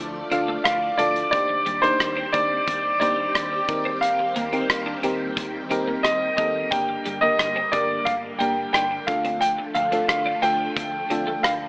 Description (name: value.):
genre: 1980s-style pop.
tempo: 89 BPM.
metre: 4/4.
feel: straight.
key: G minor.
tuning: A4 = 442 Hz.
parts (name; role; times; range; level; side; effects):
FM electric piano; accompaniment; 0.0-11.7 s; G2 to F5; -28 LUFS; equal; chorus.
phased string machine; sustained chords; 0.0-11.7 s; D3 to D5; -33 LUFS; equal; ensemble chorus, phaser.
vintage muted fingered electric bass; bass; 0.0-11.7 s; G1 to Eb2; -41 LUFS; equal; none.
twelve-string electric guitar; riff; 0.3-11.4 s; G3 to D4; -32 LUFS; equal; ensemble chorus.
modern studio drum kit; drums; 0.3-11.6 s; hi-hat, kick drum, rim click; -26 LUFS; equal; none.
warm grand piano; melody; 0.6-11.5 s; C5 to G5; -22 LUFS; equal; none.
room: light reverb, small room ambience.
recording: AM radio sound.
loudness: -20 LUFS.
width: side -30 dB against mid.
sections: 0.0-11.7 A section.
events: none.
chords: 0.0 Dm; 1.3 Cmadd9/Eb; 3.7 Eb6; 6.7 Gm; 9.1 Dm.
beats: 0.65 | 1.33 2.00 2.68 3.35 | 4.03 4.70 5.37 6.05 | 6.72 7.39 8.07 8.74 | 9.42 10.09 10.77 11.44.